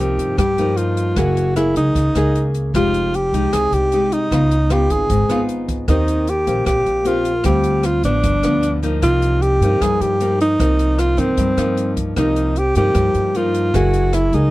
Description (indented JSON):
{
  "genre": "bossa nova",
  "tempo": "153 BPM",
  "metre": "4/4",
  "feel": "straight",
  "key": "C minor",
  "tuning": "A4 = 439 Hz",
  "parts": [
    { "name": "breathy alto saxophone", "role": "melody", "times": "0.0-14.5 s", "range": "C4 to Ab4", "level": "-18 LUFS", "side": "equal", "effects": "none" },
    { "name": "nylon-string guitar", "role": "accompaniment", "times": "0.0-14.5 s", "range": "G2 to G#4", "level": "-22 LUFS", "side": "left 2 dB", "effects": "none" },
    { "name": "upright bass", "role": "bass", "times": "0.0-14.5 s", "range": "F1 to G2", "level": "-20 LUFS", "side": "equal", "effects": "none" },
    { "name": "open jazz drum kit", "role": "drums", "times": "0.2-14.4 s", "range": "hi-hat, kick drum, rim click", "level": "-26 LUFS", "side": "equal", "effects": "none" }
  ],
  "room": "small room ambience",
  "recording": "dry, close 1970s-style studio recording",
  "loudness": "-15 LUFS",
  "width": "side -17 dB against mid",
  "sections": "0.0-12.2 A section; 12.2-14.5 A section",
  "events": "none",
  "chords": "0.0 Cm7; 1.2 F#9; 2.7 Fm9; 4.3 Db9; 5.9 Eb6; 7.5 Dm7; 8.2 G7; 9.0 Cm7; 13.7 F#9",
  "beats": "0.38 0.78 | 1.17 1.56 1.95 2.35 | 2.74 3.13 3.52 3.92 | 4.31 4.70 5.09 5.49 | 5.88 6.27 6.67 7.06 | 7.45 7.84 8.24 8.63 | 9.02 9.41 9.81 10.20 | 10.59 10.99 11.38 11.77 | 12.16 12.56 12.95 13.34 | 13.73 14.13"
}